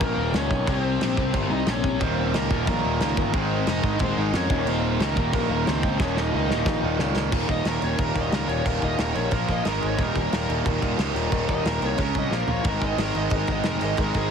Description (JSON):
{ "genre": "punk rock", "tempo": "180 BPM", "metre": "4/4", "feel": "straight", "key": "Eb mixolydian", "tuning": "A4 = 441 Hz", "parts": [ { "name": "high-gain lead guitar", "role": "melody", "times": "0.0-14.3 s", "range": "Bb3 to Eb5", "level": "-30 LUFS", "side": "right 1 dB", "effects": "distortion" }, { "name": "fuzz guitar", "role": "riff", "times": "0.0-14.3 s", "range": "Eb2 to Eb4", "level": "-29 LUFS", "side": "equal", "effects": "distortion" }, { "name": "raw garage guitar", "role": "riff", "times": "0.0-14.3 s", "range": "Eb2 to Db4", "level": "-30 LUFS", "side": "left 11 dB", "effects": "overdrive" }, { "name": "overdriven picked electric bass", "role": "bass", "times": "0.0-14.3 s", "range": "Eb1 to F2", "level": "-28 LUFS", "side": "equal", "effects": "none" }, { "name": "loose indie drum kit", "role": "drums", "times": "0.0-14.2 s", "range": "crash cymbal, kick drum, snare drum, toms", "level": "-28 LUFS", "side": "equal", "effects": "none" }, { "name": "distorted electric guitar", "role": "riff", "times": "2.0-14.3 s", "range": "Eb2 to Db4", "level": "-30 LUFS", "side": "right 13 dB", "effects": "overdrive" } ], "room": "small room ambience", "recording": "heavily compressed radio sound, multiband compression", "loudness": "-21 LUFS", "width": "side -7 dB against mid", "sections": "0.0-7.3 A section; 7.3-14.3 B section", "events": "drum fill 6.0-7.3, 12.3-12.7; lead electric guitar solo 7.3-14.3", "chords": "0.0 Eb5; 0.7 Cm; 2.0 Eb5; 3.3 Ab; 4.5 Eb5; 7.3 Eb; 9.3 Bb5; 9.7 Ab5; 10.0 Eb; 12.0 Db5; 12.3 Bb5; 12.7 Ab" }